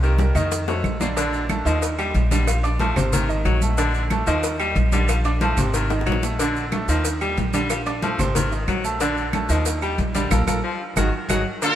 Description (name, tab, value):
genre	latin, salsa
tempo	184 BPM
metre	4/4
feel	straight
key	Bb major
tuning	A4 = 440 Hz
part	bright baritone saxophone	second line	0.0-11.8 s	D3 to Bb3	-27 LUFS	left 4 dB	none
part	bright upright piano	accompaniment	0.0-11.8 s	C3 to D6	-25 LUFS	right 2 dB	none
part	upright bass	bass	0.0-11.4 s	Ab1 to F2	-23 LUFS	equal	none
part	bongos and cowbell	percussion	0.0-11.8 s	none	-32 LUFS	left 6 dB	none
part	congas	percussion	0.0-11.8 s	none	-28 LUFS	equal	none
part	maracas	percussion	0.0-11.8 s	none	-34 LUFS	right 6 dB	none
part	claves	percussion	0.4-11.4 s	none	-34 LUFS	right 8 dB	none
part	brilliant trumpet section	melody	11.6-11.8 s	F4 to Bb4	-18 LUFS	left 1 dB	none
room	moderate plate reverb, RT60 3.7 s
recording	heard from further back in the room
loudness	-19 LUFS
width	side -11 dB against mid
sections	0.0-1.2 A section; 1.2-11.6 B section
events	drum fill 0.7-1.2, 5.9-6.4; band accent 10.3-11.6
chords	0.0 Cm7; 0.5 F7b9; 1.2 Bbmaj7; 1.8 Eb; 2.5 Bbmaj7; 3.1 Ab7; 3.8 Bbmaj7; 4.4 Eb; 5.1 Bbmaj7; 5.7 Ab7; 6.4 Bbmaj7; 7.0 Eb; 7.7 Bbmaj7; 8.4 Ab7; 9.0 Bbmaj7; 9.7 Eb; 10.3 Bb5; 11.0 Ab5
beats	0.19 0.52 0.84 | 1.17 1.50 1.82 2.15 | 2.48 2.80 3.13 3.46 | 3.78 4.11 4.44 4.76 | 5.09 5.42 5.74 6.07 | 6.40 6.72 7.05 7.38 | 7.70 8.03 8.36 8.68 | 9.01 9.34 9.66 9.99 | 10.31 10.64 10.97 11.29 | 11.62